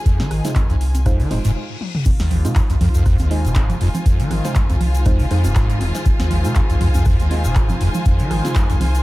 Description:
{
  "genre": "acid house",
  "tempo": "120 BPM",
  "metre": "4/4",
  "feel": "swing 56% on 16ths",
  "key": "F minor",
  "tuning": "A4 = 442 Hz",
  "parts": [
    { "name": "rich studio string section", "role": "sustained chords", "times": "0.0-9.0 s", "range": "Eb3 to Ab4", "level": "-30 LUFS", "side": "left 2 dB", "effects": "sidechain pumping" },
    { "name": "deep mellow chord stab", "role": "stabs", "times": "0.0-8.6 s", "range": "Ab3 to C5", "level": "-30 LUFS", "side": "right 3 dB", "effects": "chorus, cassette tape, analog delay" },
    { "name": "rich studio string section", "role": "texture", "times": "0.0-9.0 s", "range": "F4 to Ab5", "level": "-31 LUFS", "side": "left 1 dB", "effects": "sidechain pumping" },
    { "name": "acid bass, saw", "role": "riff", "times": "0.1-8.8 s", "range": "Eb2 to Eb3", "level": "-20 LUFS", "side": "equal", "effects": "tube saturation, ensemble chorus, analog delay" },
    { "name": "warm sub bass", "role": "bass", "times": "0.1-9.0 s", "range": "Eb1 to C2", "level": "-20 LUFS", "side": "equal", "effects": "tube saturation, sidechain pumping" },
    { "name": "electro analog drum machine", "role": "drums", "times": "0.1-9.0 s", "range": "congas, crash cymbal, handclaps, hi-hat, rim click, snare drum, toms", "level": "-26 LUFS", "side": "right 1 dB", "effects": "analog delay" },
    { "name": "electronic kick drum", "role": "drums", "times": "0.1-8.7 s", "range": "none", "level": "-17 LUFS", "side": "equal", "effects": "none" },
    { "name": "egg shaker", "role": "percussion", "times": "0.1-9.0 s", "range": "none", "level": "-39 LUFS", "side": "left 4 dB", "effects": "none" },
    { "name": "reverse cymbal", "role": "sound effects", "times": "1.2-2.1 s", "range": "none", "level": "-34 LUFS", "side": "left 6 dB", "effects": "none" }
  ],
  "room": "little or no reverb",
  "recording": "echo-heavy mix",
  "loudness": "-15 LUFS",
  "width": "side -18 dB against mid",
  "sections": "0.0-2.1 A section; 2.1-9.0 B section",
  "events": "reverse cymbal 1.2-2.1; stop 1.6-2.1; drum fill 1.8; drop 2.1-9.0",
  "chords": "0.0 Fm7"
}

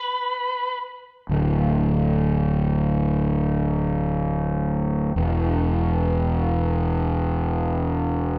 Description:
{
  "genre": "post-rock",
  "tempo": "free time",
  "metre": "none",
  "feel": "none",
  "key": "unclear",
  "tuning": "A4 = 440 Hz",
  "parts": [
    { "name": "octave-fuzz lead guitar", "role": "melody", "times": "0.0-0.8 s", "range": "B4", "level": "-27 LUFS", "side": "equal", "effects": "distortion" },
    { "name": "fuzz fingered electric bass", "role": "bass", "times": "1.3-8.4 s", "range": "D1 to E1", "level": "-22 LUFS", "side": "equal", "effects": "overdrive" }
  ],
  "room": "moderate stone room reverb, RT60 1.3 s",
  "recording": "band playing live in one room",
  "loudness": "-23 LUFS",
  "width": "mono",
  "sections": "0.0-8.4 A section",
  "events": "none",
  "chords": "none"
}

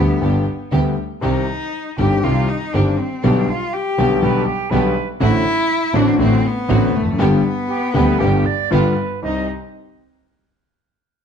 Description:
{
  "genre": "tango",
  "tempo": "120 BPM",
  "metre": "4/4",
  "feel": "rubato",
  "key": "C harmonic minor",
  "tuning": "A4 = 441 Hz",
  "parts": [
    { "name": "rich cello", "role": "second line", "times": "0.0-9.5 s", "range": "A3 to G4", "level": "-22 LUFS", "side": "left 1 dB", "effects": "none" },
    { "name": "warm concert grand piano", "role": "accompaniment", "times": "0.0-9.4 s", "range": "G1 to G4", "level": "-18 LUFS", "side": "left 3 dB", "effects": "none" },
    { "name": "dark chamber string section", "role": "stabs", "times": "0.0-9.4 s", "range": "B3 to G4", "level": "-26 LUFS", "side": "right 5 dB", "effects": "none" },
    { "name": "warm double bass", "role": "bass", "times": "0.0-9.4 s", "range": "F1 to D2", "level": "-20 LUFS", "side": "right 2 dB", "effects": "none" },
    { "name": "bright reedy silver concert flute", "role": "second line", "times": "4.2-9.5 s", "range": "G4 to Eb5", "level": "-24 LUFS", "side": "right 7 dB", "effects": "none" }
  ],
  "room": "moderate large studio reverb, RT60 1.1 s",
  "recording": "dark, warm production, nothing above 10.3 kHz",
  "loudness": "-15 LUFS",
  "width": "side -7 dB against mid",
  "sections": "0.0-9.2 A section; 9.2-11.2 B section",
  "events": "cello solo 0.0-9.2",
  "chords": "0.0 G; 1.2 Cm; 3.2 G/B; 5.2 D7/A; 7.2 G; 8.7 G7; 9.2 Cm"
}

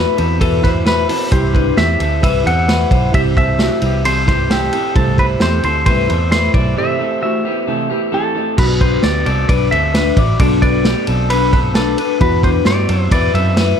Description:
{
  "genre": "jangly indie pop",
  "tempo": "132 BPM",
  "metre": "4/4",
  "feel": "straight",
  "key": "unclear",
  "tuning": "A4 = 440 Hz",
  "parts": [
    { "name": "clean electric guitar", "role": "melody", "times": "0.0-13.8 s", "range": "G4 to F#5", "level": "-20 LUFS", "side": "right 1 dB", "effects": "spring reverb" },
    { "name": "fingerpicked plugged-in steel-string acoustic guitar", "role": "accompaniment", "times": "0.0-8.6 s", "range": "E2 to G4", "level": "-24 LUFS", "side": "right 5 dB", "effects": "none" },
    { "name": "mellow reed electric piano", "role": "accompaniment", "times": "0.0-13.8 s", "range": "B3 to C5", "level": "-26 LUFS", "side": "right 4 dB", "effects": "fast tremolo" },
    { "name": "electric guitar through a small old amp", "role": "arpeggios", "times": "0.0-13.8 s", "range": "A3 to D5", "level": "-19 LUFS", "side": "left 5 dB", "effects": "spring reverb" },
    { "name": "vintage muted fingered electric bass", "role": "bass", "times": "0.0-13.7 s", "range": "A1 to G2", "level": "-17 LUFS", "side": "equal", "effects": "none" },
    { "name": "vintage drum kit", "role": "drums", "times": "0.2-13.7 s", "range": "crash cymbal, hi-hat, kick drum, ride cymbal, snare drum", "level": "-17 LUFS", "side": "equal", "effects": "none" }
  ],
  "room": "moderate studio ambience, RT60 0.5 s",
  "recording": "none",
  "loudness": "-12 LUFS",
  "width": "side -8 dB against mid",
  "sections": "0.0-8.6 A section; 8.6-13.8 A section",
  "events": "break 6.8-8.6",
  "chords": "0.0 Esus2; 1.3 Am7; 8.6 Bm; 12.2 Esus2"
}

